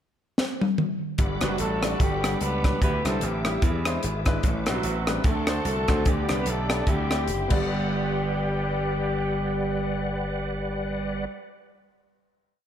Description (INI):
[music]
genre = uptempo gospel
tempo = 148 BPM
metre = 4/4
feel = swing 58% on 8ths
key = G major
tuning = A4 = 441 Hz
[part]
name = crisp fusion drum kit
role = drums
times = 0.4-7.6 s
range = crash cymbal, hi-hat, kick drum, rim click, snare drum, toms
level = -26 LUFS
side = equal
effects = none
[part]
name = clear baby grand piano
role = accompaniment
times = 1.2-11.3 s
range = G2 to F#5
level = -32 LUFS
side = left 2 dB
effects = slapback echo
[part]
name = bright tonewheel organ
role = sustained chords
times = 1.2-11.3 s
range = G3 to D6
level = -32 LUFS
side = right 1 dB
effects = fast rotary speaker, chorus vibrato
[part]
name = slap bass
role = bass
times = 1.2-11.2 s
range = F#1 to E2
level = -29 LUFS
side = equal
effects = none
[part]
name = dark horn section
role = melody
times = 1.4-11.2 s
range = E3 to B4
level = -30 LUFS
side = left 1 dB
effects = slapback echo
[sound]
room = moderate lush hall reverb, RT60 1.5 s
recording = big arena sound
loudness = -23 LUFS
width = side -10 dB against mid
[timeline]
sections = 0.0-1.2 pickup bar; 1.2-7.7 breakdown; 7.7-10.9 final hit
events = drum fill 0.4-1.2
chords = 0.0 N.C.; 1.2 Gmaj7; 2.8 D9sus4; 3.6 E7b13; 4.4 Am11; 5.2 D7; 6.1 G; 6.9 D9sus4; 7.5 Gmaj7